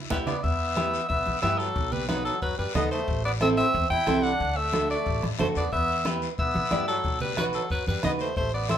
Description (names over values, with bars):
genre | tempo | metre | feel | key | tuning
latin, cumbia | 182 BPM | 4/4 | straight | E minor | A4 = 439 Hz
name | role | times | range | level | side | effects
bright alto saxophone | melody | 0.0-8.8 s | E4 to G5 | -28 LUFS | equal | none
bright trombone | second line | 0.0-8.8 s | F#3 to E4 | -33 LUFS | left 3 dB | none
flamenco guitar | accompaniment | 0.1-8.8 s | B3 to D5 | -29 LUFS | right 2 dB | none
upright bass | bass | 0.1-8.8 s | A1 to G2 | -32 LUFS | equal | none
bombo | percussion | 0.1-8.8 s | none | -34 LUFS | left 1 dB | none
congas | percussion | 0.1-8.8 s | none | -34 LUFS | right 1 dB | none
guiro | percussion | 0.1-8.8 s | none | -40 LUFS | left 8 dB | none
room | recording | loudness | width
light reverb | minimal, uncompressed stereo recording | -23 LUFS | side -9 dB against mid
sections
0.4-8.8 A section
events
drum fill 0.0-0.4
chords
0.4 Em; 1.8 B7; 3.1 Am; 4.4 D; 5.7 Em; 7.0 B